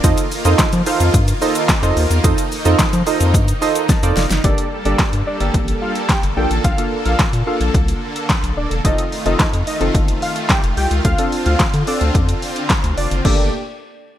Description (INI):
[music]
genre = dance-pop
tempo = 109 BPM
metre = 4/4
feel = straight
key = G minor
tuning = A4 = 441 Hz
[part]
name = warm analog keys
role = accompaniment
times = 0.0-13.5 s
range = Bb3 to A5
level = -21 LUFS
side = right 3 dB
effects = chorus, sidechain pumping
[part]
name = supersaw chords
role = sustained chords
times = 0.0-13.5 s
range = Bb2 to A4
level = -24 LUFS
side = equal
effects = wide subtle chorus, sidechain pumping
[part]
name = round analog bass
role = bass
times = 0.0-13.5 s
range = Eb1 to F3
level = -18 LUFS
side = equal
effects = sidechain pumping
[part]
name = deep house drum kit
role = drums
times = 0.0-13.4 s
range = crash cymbal, handclaps, hi-hat, kick drum, shaker, snare drum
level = -17 LUFS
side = equal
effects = overdrive
[part]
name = fat analog lead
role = melody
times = 4.4-13.5 s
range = D5 to G5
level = -24 LUFS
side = equal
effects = chorus, digital delay
[sound]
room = light reverb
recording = bright 1980s-style digital production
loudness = -14 LUFS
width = side -11 dB against mid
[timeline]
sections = 0.0-4.4 A section; 4.4-13.2 B section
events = synth keys fill 3.6-4.4; drum fill 3.9-4.4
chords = 0.0 F7; 4.4 Gmadd9; 6.4 Bbmaj7; 8.8 F7; 11.0 Dm7; 13.2 Gmadd9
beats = | 0.04 0.59 1.14 1.69 | 2.24 2.79 3.34 3.89 | 4.44 4.99 5.54 6.09 | 6.64 7.20 7.75 8.30 | 8.85 9.40 9.95 10.50 | 11.05 11.60 12.15 12.70 | 13.25